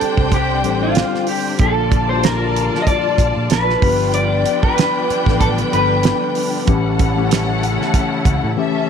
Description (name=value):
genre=lush 1970s-style soul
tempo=95 BPM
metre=4/4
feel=swing 54% on 16ths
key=unclear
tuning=A4 = 440 Hz
part: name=electric guitar through a small old amp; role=melody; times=0.0-8.5 s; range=F4 to Eb5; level=-19 LUFS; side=left 1 dB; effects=analog chorus
part: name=warm studio string section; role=second line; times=0.0-8.9 s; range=C#4 to A5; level=-22 LUFS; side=left 1 dB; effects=none
part: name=mellow tine electric piano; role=accompaniment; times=0.0-8.9 s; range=E3 to C5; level=-22 LUFS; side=left 10 dB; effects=medium stereo tremolo
part: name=muted studio string section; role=sustained chords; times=0.0-8.9 s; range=Bb2 to G4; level=-28 LUFS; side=right 2 dB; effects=none
part: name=fingered electric bass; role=bass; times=0.0-8.5 s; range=G1 to Bb2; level=-21 LUFS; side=right 1 dB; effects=none
part: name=damped 70s drum kit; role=drums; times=0.0-8.4 s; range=hi-hat, kick drum, snare drum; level=-18 LUFS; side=right 3 dB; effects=none
room=light reverb, studio ambience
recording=1960s-style stereo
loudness=-14 LUFS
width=side -7 dB against mid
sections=0.0-8.9 A section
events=none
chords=0.0 D7sus4; 1.6 Bbmaj7; 3.8 G7; 6.7 A7